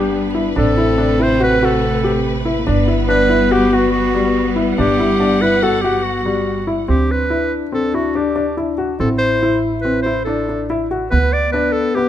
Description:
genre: contemporary instrumental, chamber music in an uneven meter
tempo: 142 BPM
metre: 5/4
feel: straight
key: D mixolydian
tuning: A4 = 440 Hz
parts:
  - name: bright clarinet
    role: melody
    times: 0.0-12.1 s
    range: F#4 to D5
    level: -18 LUFS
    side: equal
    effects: none
  - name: dark French horn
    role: second line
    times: 0.0-12.1 s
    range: Bb3 to E4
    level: -22 LUFS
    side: left 4 dB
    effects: none
  - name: clear studio string section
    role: sustained chords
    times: 0.0-6.9 s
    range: C3 to F#5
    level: -22 LUFS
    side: right 2 dB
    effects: none
  - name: warm baby grand piano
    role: arpeggios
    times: 0.0-12.1 s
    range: G3 to G4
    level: -19 LUFS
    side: left 2 dB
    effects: none
  - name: upright bass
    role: bass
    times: 0.0-12.1 s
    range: G1 to D2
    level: -22 LUFS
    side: right 3 dB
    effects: none
room: light reverb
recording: close, detailed microphones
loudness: -14 LUFS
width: side -11 dB against mid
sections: 0.0-6.9 A section; 6.9-12.1 B section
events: none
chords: 0.0 G; 0.6 Am7; 2.7 Gmaj7; 6.9 D9sus4; 9.0 Am; 11.1 D5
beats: 0.14 | 0.56 0.98 1.40 1.82 2.24 | 2.67 3.09 3.51 3.93 4.35 | 4.78 5.20 5.62 6.04 6.46 | 6.89 7.31 7.73 8.16 8.58 | 9.00 9.43 9.85 10.27 10.69 | 11.12 11.54 11.96

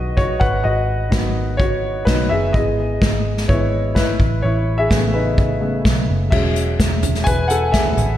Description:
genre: piano-driven pop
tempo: 127 BPM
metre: 4/4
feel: straight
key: unclear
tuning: A4 = 440 Hz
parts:
  - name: warm grand piano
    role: accompaniment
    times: 0.0-8.2 s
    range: C#3 to G#5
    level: -20 LUFS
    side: left 1 dB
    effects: slapback echo
  - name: vintage muted picked electric bass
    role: bass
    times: 0.0-8.2 s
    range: E1 to B1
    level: -21 LUFS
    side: equal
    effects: none
  - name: unplugged drum kit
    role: drums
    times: 0.2-8.1 s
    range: crash cymbal, hi-hat, kick drum, snare drum, toms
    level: -19 LUFS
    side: equal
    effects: none
room: moderate lush hall reverb, RT60 1.8 s, small room ambience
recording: big arena sound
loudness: -15 LUFS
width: side -12 dB against mid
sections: 0.0-6.3 A section; 6.3-8.2 B section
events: grand piano solo 0.0-6.3, 6.3-8.2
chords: 0.4 G#m7; 2.5 E/G#; 4.2 Aadd9; 6.3 E6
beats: 0.17 | 0.65 1.12 1.59 2.06 | 2.54 3.01 3.48 3.95 | 4.43 4.90 5.37 5.84 | 6.32 6.79 7.26 7.73

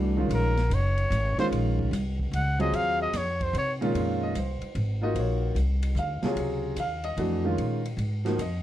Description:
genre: modal jazz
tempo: 148 BPM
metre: 3/4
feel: swing 67% on 8ths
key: Bb minor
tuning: A4 = 442 Hz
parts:
  - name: warm concert grand piano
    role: accompaniment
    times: 0.0-8.6 s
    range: Bb2 to F5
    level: -29 LUFS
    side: equal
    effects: none
  - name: upright bass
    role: bass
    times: 0.0-8.6 s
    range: Gb1 to C3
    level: -27 LUFS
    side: equal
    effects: none
  - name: mellow trumpet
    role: melody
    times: 0.3-3.7 s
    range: Bb4 to Gb5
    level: -28 LUFS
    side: equal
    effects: none
  - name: open jazz drum kit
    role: drums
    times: 0.3-8.5 s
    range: hi-hat, kick drum, ride cymbal, snare drum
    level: -39 LUFS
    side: equal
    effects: none
room: light reverb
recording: dark, warm production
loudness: -24 LUFS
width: side -13 dB against mid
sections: 0.0-3.9 A section; 3.9-8.6 A section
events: trumpet solo 0.0-3.9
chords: 0.0 Ebm9; 3.9 Bbm9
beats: | 0.31 0.71 1.12 | 1.52 1.92 2.33 | 2.73 3.13 3.54 | 3.94 4.35 4.75 | 5.16 5.56 5.96 | 6.37 6.77 7.18 | 7.58 7.99 8.39

